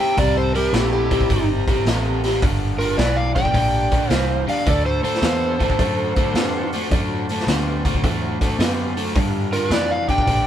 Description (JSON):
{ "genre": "blues rock power trio and southern rock", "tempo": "107 BPM", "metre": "4/4", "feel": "swing 67% on 8ths", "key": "unclear", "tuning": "A4 = 440 Hz", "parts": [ { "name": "overdriven slide guitar", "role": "melody", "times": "0.0-10.5 s", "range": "G4 to G5", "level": "-22 LUFS", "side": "equal", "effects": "none" }, { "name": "bluesy overdriven lead guitar", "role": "second line", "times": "0.0-10.5 s", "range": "E4 to E5", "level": "-28 LUFS", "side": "right 3 dB", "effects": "distortion" }, { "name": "overdriven tonewheel organ", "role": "sustained chords", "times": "0.0-10.5 s", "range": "E3 to D#5", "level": "-33 LUFS", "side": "right 1 dB", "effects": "slow rotary speaker" }, { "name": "overdriven electric guitar", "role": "riff", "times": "0.0-10.5 s", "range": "G2 to B3", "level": "-23 LUFS", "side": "equal", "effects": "none" }, { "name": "vintage muted picked electric bass", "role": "bass", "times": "0.2-10.5 s", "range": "G1 to G2", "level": "-24 LUFS", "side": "equal", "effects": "none" }, { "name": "raw garage drum kit", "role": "drums", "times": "0.2-10.4 s", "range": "hi-hat, kick drum, snare drum", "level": "-22 LUFS", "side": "equal", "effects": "none" } ], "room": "light reverb", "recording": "band playing live in one room", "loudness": "-17 LUFS", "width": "side -10 dB against mid", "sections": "0.0-10.5 A section", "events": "none", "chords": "0.0 C7#9; 2.4 G7#9; 4.7 D7#9; 9.2 G7#9" }